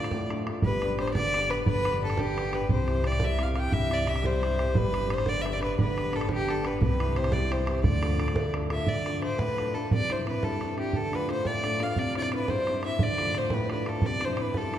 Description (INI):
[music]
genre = celtic folk, Celtic jig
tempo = 117 BPM (dotted quarters)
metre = 6/8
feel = straight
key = D dorian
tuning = A4 = 440 Hz
[part]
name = rich fiddle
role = melody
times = 0.0-14.8 s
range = G4 to G5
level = -29 LUFS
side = equal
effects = none
[part]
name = warm grand piano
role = accompaniment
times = 0.0-14.8 s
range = G2 to B4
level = -32 LUFS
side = left 1 dB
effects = none
[part]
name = bodhran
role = percussion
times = 0.0-14.8 s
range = none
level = -30 LUFS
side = right 1 dB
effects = none
[part]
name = upright bass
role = bass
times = 0.6-8.8 s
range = G1 to D2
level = -31 LUFS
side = equal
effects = none
[sound]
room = wet church reverb, RT60 3.5 s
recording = recorded in a church or concert hall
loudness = -25 LUFS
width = side -11 dB against mid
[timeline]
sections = 0.6-8.9 A section; 8.9-14.8 B section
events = none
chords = 0.0 Dm; 0.6 G; 2.7 C; 4.8 G; 6.8 C; 7.8 Dm; 9.9 Cadd9; 10.9 Dm; 12.0 Cadd9; 13.0 Dm; 14.0 Cadd9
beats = 0.13 | 0.65 1.16 | 1.67 2.19 | 2.70 3.21 | 3.73 4.24 | 4.75 5.27 | 5.78 6.29 | 6.81 7.32 | 7.84 8.35 | 8.87 9.38 | 9.90 10.41 | 10.93 11.44 | 11.96 12.47 | 12.99 13.51 | 14.02 14.54